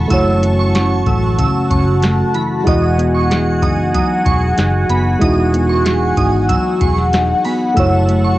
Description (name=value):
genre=indie pop, bedroom pop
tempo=94 BPM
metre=4/4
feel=straight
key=E major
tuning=A4 = 436 Hz
part: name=mellow electric guitar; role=accompaniment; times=0.0-8.4 s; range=F#2 to G#4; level=-18 LUFS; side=left 1 dB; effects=analog chorus, warbly pitch drift, cassette tape
part: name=reed electric piano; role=accompaniment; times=0.0-8.4 s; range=G#3 to D#5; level=-20 LUFS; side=right 2 dB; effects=cassette tape
part: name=phased analog pad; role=sustained chords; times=0.0-8.4 s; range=F#4 to C#6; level=-19 LUFS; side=equal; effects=phaser, chorus, cassette tape
part: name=vintage muted fingered electric bass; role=bass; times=0.0-8.4 s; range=E1 to A1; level=-17 LUFS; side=equal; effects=none
part: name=shimmering bell with halo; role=second line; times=0.1-8.4 s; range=B5 to E6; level=-24 LUFS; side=right 4 dB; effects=ensemble chorus, tremolo, wide subtle chorus, cassette tape, analog delay
part: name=soft vintage rhythm box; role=drums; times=0.1-8.2 s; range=hi-hat, kick drum, snare drum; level=-19 LUFS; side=equal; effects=none
room=moderate small room ambience, RT60 0.5 s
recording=home recording on cassette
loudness=-12 LUFS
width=side -16 dB against mid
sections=0.0-8.4 A section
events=none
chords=0.0 F#m7; 2.7 Emaj9; 7.8 F#m7